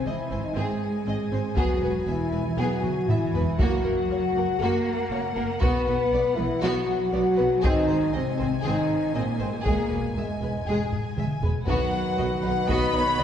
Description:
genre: cinematic, epic orchestral film score.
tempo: 119 BPM.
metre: 4/4.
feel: straight.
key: unclear.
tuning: A4 = 440 Hz.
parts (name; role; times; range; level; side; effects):
warm chamber violin section; melody; 0.0-13.2 s; F#5 to B5; -33 LUFS; left 4 dB; none.
mellow French horn section; sustained chords; 0.0-13.2 s; F#3 to B4; -27 LUFS; left 2 dB; none.
rich symphonic cello section; bass; 0.0-13.2 s; G#2 to B3; -31 LUFS; right 2 dB; none.
warm symphonic violin section; second line; 0.1-13.2 s; B3 to E5; -33 LUFS; left 2 dB; none.
warm symphonic viola section; accompaniment; 0.1-13.2 s; G#3 to D#5; -33 LUFS; right 1 dB; none.
rich symphonic double bass section; bass; 0.1-13.2 s; E1 to B1; -32 LUFS; right 2 dB; none.
taiko ensemble; drums; 1.6-13.2 s; none; -28 LUFS; equal; none.
clear trombone section; sustained chords; 11.7-13.2 s; B2 to D#3; -33 LUFS; right 3 dB; none.
dark trumpet section; stabs; 11.7-13.2 s; B4; -32 LUFS; left 2 dB; none.
warm tuba; bass; 11.7-13.2 s; B1; -33 LUFS; right 3 dB; none.
room: wet scoring stage reverb, RT60 1.9 s.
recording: heard from further back in the room, nothing above 10.7 kHz.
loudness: -22 LUFS.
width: side -9 dB against mid.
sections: 0.0-11.7 A section; 11.7-13.2 B section.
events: drum fill 2.8-3.6, 10.9-11.7.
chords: 0.0 G#; 1.6 E; 3.6 F#; 5.6 B5; 7.6 G#; 9.7 E; 11.7 B.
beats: 0.05 0.56 1.06 | 1.57 2.08 2.58 3.09 | 3.60 4.10 4.61 5.11 | 5.62 6.12 6.63 7.14 | 7.64 8.15 8.65 9.16 | 9.66 10.17 10.68 11.18 | 11.69 12.19 12.70 13.21.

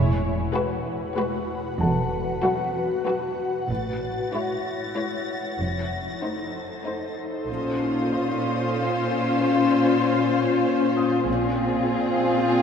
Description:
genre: cinematic.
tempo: 95 BPM.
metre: 3/4.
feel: straight.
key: Bb minor from 7.5 s.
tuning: A4 = 443 Hz.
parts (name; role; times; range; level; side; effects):
ethereal airy pad; sustained chords; 0.0-12.6 s; Db4 to C6; -29 LUFS; left 2 dB; ensemble chorus, built-in reverb, phaser.
clear studio cello section; bass; 0.0-12.6 s; E2 to Bb2; -29 LUFS; right 1 dB; none.
rich studio double bass section; bass; 0.0-8.1, 11.3-11.9 s; E1 to Bb1; -30 LUFS; right 2 dB; none.
clear studio violin section; melody; 0.5-12.6 s; Ab4 to C#5; -32 LUFS; left 3 dB; none.
rich studio violin section; second line; 0.5-12.6 s; Eb4 to F#4; -29 LUFS; equal; none.
rich studio viola section; accompaniment; 0.5-12.6 s; F#3 to Db4; -27 LUFS; left 3 dB; none.
felt-muted upright piano; texture; 1.8-12.6 s; F#4 to Eb6; -35 LUFS; left 3 dB; none.
rich studio violin section; texture; 3.7-10.9 s; C6 to A#6; -38 LUFS; left 4 dB; none.
room: wet cathedral reverb, RT60 4.5 s.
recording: none.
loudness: -22 LUFS.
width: side -7 dB against mid.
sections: 0.0-7.5 A section; 7.5-12.6 B section.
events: none.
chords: 0.0 Eadd9; 3.7 Amaj7; 5.6 F7; 7.5 Bbmadd9; 11.3 Fm/Bb.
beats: 0.53 1.17 | 1.80 2.43 3.06 | 3.69 4.32 4.95 | 5.59 6.22 6.85 | 7.48 8.11 8.74 | 9.38 10.01 10.64 | 11.27 11.90 12.53.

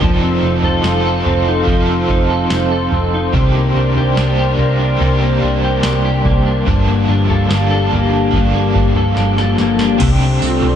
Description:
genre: dream pop.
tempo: 72 BPM.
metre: 4/4.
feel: straight.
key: C dorian.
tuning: A4 = 440 Hz.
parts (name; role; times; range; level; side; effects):
overdriven electric guitar; accompaniment; 0.0-10.8 s; G2 to A4; -20 LUFS; right 3 dB; tremolo, lush chorus.
hollow soft pad; sustained chords; 0.0-10.8 s; Bb3 to C6; -20 LUFS; equal; chorus.
clean electric guitar; arpeggios; 0.0-10.8 s; G2 to A4; -17 LUFS; left 3 dB; ensemble chorus, ping-pong delay.
vintage muted picked electric bass; bass; 0.0-10.8 s; F1 to C2; -19 LUFS; equal; none.
booming analog drum machine; drums; 0.0-10.8 s; crash cymbal, kick drum, snare drum, tambourine, toms; -19 LUFS; right 1 dB; none.
vibraphone with medium mallets; texture; 3.8-10.8 s; F4 to Bb4; -29 LUFS; right 4 dB; none.
room: light reverb.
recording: dark, warm production.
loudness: -12 LUFS.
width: side -9 dB against mid.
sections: 0.0-10.0 A section.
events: drum fill 9.2-10.0.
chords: 0.0 F7; 3.3 Cm9; 6.7 Gm9; 10.0 Cm69.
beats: | 0.01 0.84 1.68 2.51 | 3.35 4.18 5.01 5.84 | 6.68 7.51 8.35 9.18 | 10.01.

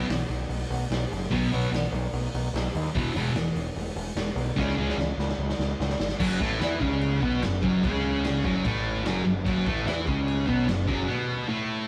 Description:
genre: garage rock duo or trio.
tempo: 147 BPM.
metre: 4/4.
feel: straight.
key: unclear.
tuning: A4 = 438 Hz.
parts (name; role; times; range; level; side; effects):
thick fuzz guitar; riff; 0.0-11.9 s; E2 to E4; -28 LUFS; equal; distortion.
growling picked electric bass; bass; 0.0-11.1 s; E1 to E2; -32 LUFS; equal; overdrive.
raw garage drum kit; drums; 0.1-11.0 s; crash cymbal, hi-hat, kick drum, snare drum; -34 LUFS; equal; none.
room: moderate stone room reverb, RT60 1.2 s.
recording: rough rehearsal-room recording.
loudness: -27 LUFS.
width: mono.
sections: 0.0-6.2 A section; 6.2-11.9 B section.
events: drum fill 4.6-6.2; break 11.1-11.9.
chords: 0.0 B5; 2.9 E5; 4.6 C#5; 6.2 F#5.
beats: 0.09 0.50 0.91 | 1.31 1.72 2.13 2.54 | 2.94 3.35 3.76 4.16 | 4.57 4.98 5.38 5.79 | 6.20 6.61 7.01 7.42 | 7.83 8.24 8.64 9.05 | 9.46 9.87 10.27 10.68 | 11.09 11.49.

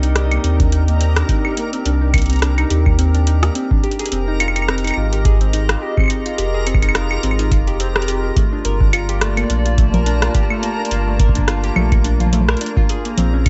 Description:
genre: IDM.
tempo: 106 BPM.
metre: 4/4.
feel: swing 56% on 16ths.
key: C minor.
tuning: A4 = 440 Hz.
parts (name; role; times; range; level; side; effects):
warbly tape-like pad; sustained chords; 0.0-13.5 s; Bb3 to A5; -29 LUFS; equal; chorus, built-in reverb.
harp-like synth pluck; arpeggios; 0.0-13.5 s; A3 to Bb4; -26 LUFS; equal; chorus, cassette tape, delay.
warm sub bass; bass; 0.0-13.5 s; F1 to Eb2; -20 LUFS; equal; none.
booming analog drum machine; drums; 0.0-13.5 s; claves, congas, hi-hat, rim click; -24 LUFS; equal; none.
backwards swelling texture; texture; 0.0-13.5 s; Bb4; -32 LUFS; equal; built-in reverb, sidechain pumping.
electronic kick drum; drums; 0.6-13.5 s; none; -19 LUFS; equal; none.
room: digital ambience.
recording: nothing above 7.9 kHz.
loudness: -17 LUFS.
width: mono.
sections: 0.0-13.5 A section.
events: none.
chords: 0.0 Cm9; 3.8 Fm9; 8.4 Gm9; 12.9 Bbm9.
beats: 0.16 0.72 1.29 | 1.85 2.42 2.99 3.55 | 4.12 4.68 5.25 5.82 | 6.38 6.95 7.51 8.08 | 8.65 9.21 9.78 10.35 | 10.91 11.48 12.04 12.61 | 13.18.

